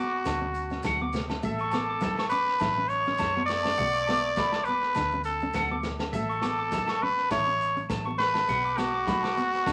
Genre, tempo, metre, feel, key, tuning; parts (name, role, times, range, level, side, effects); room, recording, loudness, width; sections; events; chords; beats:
highlife guitar band; 102 BPM; 4/4; swing 54% on 16ths; A major; A4 = 443 Hz
growling trumpet; melody; 0.0-9.7 s; F#4 to D5; -29 LUFS; equal
nylon-string guitar; accompaniment; 0.0-9.7 s; A3 to E4; -38 LUFS; equal
electric guitar at the edge of break-up; arpeggios; 0.0-9.4 s; E5 to D6; -36 LUFS; equal; spring reverb
vintage muted fingered electric bass; bass; 0.0-9.7 s; A1 to F#2; -40 LUFS; equal
crunchy breakbeat drum kit; drums; 0.3-9.7 s; kick drum, snare drum; -39 LUFS; equal
agogo bells; percussion; 0.3-9.7 s; -42 LUFS; equal
congas; percussion; 0.3-9.7 s; -40 LUFS; equal
maracas; percussion; 0.3-9.7 s; -53 LUFS; equal
wet club reverb, RT60 0.6 s; vinyl crackle; -27 LUFS; mono
0.0-9.7 A section
0.3 D; 1.4 A; 3.8 Bm; 5.0 D5; 6.1 A; 8.5 Bm
0.26 0.85 | 1.44 2.02 2.61 3.20 | 3.79 4.37 4.96 5.55 | 6.14 6.72 7.31 7.90 | 8.49 9.08 9.67